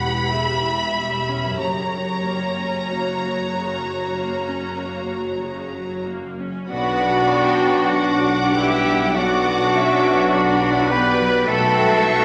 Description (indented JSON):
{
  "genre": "classical, slow romantic movement for symphony orchestra",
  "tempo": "45-53 BPM",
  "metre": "4/4",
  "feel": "rubato",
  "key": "B minor",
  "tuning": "A4 = 439 Hz",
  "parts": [
    { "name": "rich studio violin section", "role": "melody", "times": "0.0-12.2 s", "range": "A#5 to D6", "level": "-30 LUFS", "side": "equal", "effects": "none" },
    { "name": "warm studio violin section", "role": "second line", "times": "0.0-12.2 s", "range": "C#5 to G5", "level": "-29 LUFS", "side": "equal", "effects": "none" },
    { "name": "rich studio viola section", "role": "accompaniment", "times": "0.0-12.2 s", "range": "C#3 to G4", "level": "-30 LUFS", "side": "equal", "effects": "none" },
    { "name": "concert harp", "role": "arpeggios", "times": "0.0-12.2 s", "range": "F#2 to C#5", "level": "-32 LUFS", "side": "equal", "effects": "none" },
    { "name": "rich studio cello section", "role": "bass", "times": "0.0-12.2 s", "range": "E2 to B4", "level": "-27 LUFS", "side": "equal", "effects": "none" },
    { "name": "rich studio double bass section", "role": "bass", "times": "0.0-12.2 s", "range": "E1 to B1", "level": "-32 LUFS", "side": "equal", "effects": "none" },
    { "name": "bright clarinet", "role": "second line", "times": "6.7-12.2 s", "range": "F#4 to B4", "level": "-29 LUFS", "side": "equal", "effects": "none" },
    { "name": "silver concert flute", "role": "second line", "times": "6.7-12.2 s", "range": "F#5 to B5", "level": "-26 LUFS", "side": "equal", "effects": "none" },
    { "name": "warm French horn section", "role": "sustained chords", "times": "6.7-12.2 s", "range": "F#3 to B3", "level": "-29 LUFS", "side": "equal", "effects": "none" },
    { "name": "warm trumpet", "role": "stabs", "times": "6.7-12.2 s", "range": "D4 to G4", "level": "-26 LUFS", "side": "equal", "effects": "none" },
    { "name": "warm tuba", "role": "bass", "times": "6.7-12.2 s", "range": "B1", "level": "-31 LUFS", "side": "equal", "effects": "none" }
  ],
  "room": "wet scoring stage reverb, RT60 1.5 s",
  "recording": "lossy compression artefacts",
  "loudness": "-20 LUFS",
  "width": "mono",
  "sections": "0.0-6.7 A section; 6.7-12.2 B section",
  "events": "none",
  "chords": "0.0 C#dim/E; 1.6 F#; 6.7 Bm; 11.5 Em/B"
}